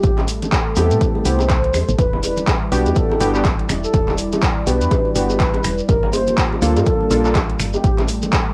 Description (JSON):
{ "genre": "deep house", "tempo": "123 BPM", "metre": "4/4", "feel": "swing 59% on 16ths", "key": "E minor", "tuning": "A4 = 441 Hz", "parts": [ { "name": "mellow horn-like synth lead", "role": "melody", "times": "0.0-8.0 s", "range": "G4 to C5", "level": "-25 LUFS", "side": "equal", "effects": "chorus, cassette tape, analog delay" }, { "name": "warm analog pad", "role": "sustained chords", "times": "0.0-8.5 s", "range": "G3 to D5", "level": "-28 LUFS", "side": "equal", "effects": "chorus, sidechain pumping, cassette tape" }, { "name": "woody FM bass", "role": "bass", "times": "0.0-8.3 s", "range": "D1 to A2", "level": "-24 LUFS", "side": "equal", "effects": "sidechain pumping" }, { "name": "deep house drum kit", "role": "drums", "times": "0.0-8.4 s", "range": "finger snaps, handclaps, hi-hat", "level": "-27 LUFS", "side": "equal", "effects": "overdrive" }, { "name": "electronic kick drum", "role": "drums", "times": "0.0-8.4 s", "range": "none", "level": "-21 LUFS", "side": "equal", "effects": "none" }, { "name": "shekere", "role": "percussion", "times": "0.0-8.4 s", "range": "none", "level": "-34 LUFS", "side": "equal", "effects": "none" }, { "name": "bongos and congas", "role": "percussion", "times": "0.2-8.4 s", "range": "none", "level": "-29 LUFS", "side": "equal", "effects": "none" }, { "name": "warm analog keys", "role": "stabs", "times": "0.8-7.4 s", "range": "Bb3 to A4", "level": "-23 LUFS", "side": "equal", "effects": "chorus, sidechain pumping, cassette tape, analog delay" } ], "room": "light reverb", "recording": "home recording on cassette", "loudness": "-18 LUFS", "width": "mono", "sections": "0.0-8.5 A section", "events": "none", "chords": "0.0 Am7; 2.0 Em7; 5.9 Gm7; 7.8 A7(no3)", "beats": "| 0.04 0.52 1.01 1.50 | 1.99 2.47 2.96 3.45 | 3.94 4.42 4.91 5.40 | 5.89 6.38 6.86 7.35 | 7.84 8.33" }